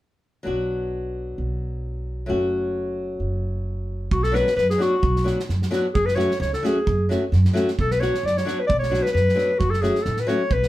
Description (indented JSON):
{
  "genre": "balkan folk, Balkan wedding band",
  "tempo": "132 BPM",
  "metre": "2/4",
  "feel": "swing 54% on 16ths",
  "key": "B minor",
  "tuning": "A4 = 440 Hz",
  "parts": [
    { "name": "flamenco guitar", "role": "accompaniment", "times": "0.4-10.4 s", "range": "F#3 to F#4", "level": "-25 LUFS", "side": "left 1 dB", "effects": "none" },
    { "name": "upright bass", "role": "bass", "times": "0.5-10.7 s", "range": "F#1 to F#2", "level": "-24 LUFS", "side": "right 1 dB", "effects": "none" },
    { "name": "clear clarinet", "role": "melody", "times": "4.1-10.7 s", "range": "F#4 to D5", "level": "-22 LUFS", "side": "left 1 dB", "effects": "none" },
    { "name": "loose indie drum kit", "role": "percussion", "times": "4.1-10.7 s", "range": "kick drum, snare drum", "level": "-28 LUFS", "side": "right 2 dB", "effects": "none" }
  ],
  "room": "moderate studio reverb, RT60 0.6 s",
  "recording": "band playing live in one room",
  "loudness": "-20 LUFS",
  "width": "side -15 dB against mid",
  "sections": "0.5-4.1 A section; 4.1-10.7 B section",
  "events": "none",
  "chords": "0.5 Bm; 2.3 F#m; 4.1 Bm; 6.0 F#m; 7.8 Bm; 9.6 F#m"
}